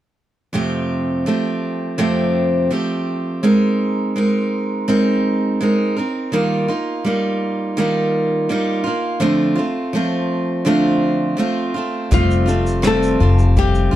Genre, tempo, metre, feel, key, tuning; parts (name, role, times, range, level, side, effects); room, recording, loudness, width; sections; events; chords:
acoustic pop; 83 BPM; 4/4; straight; F mixolydian; A4 = 442 Hz
picked steel-string acoustic guitar; accompaniment; 0.5-14.0 s; F2 to Bb4; -17 LUFS; right 1 dB
flamenco guitar; melody; 12.1-14.0 s; F4 to A4; -20 LUFS; left 4 dB
upright bass; bass; 12.1-14.0 s; F1; -16 LUFS; left 1 dB
vintage brush drum kit; drums; 12.1-13.9 s; kick drum, rim click, shaker; -20 LUFS; equal
moderate studio reverb, RT60 0.6 s; dark, warm production; -16 LUFS; side -13 dB against mid
0.5-12.1 A section; 12.1-14.0 B section
0.5 Fadd9; 3.4 Abadd9; 6.3 Ebadd9; 9.2 Dm7; 12.1 Fadd9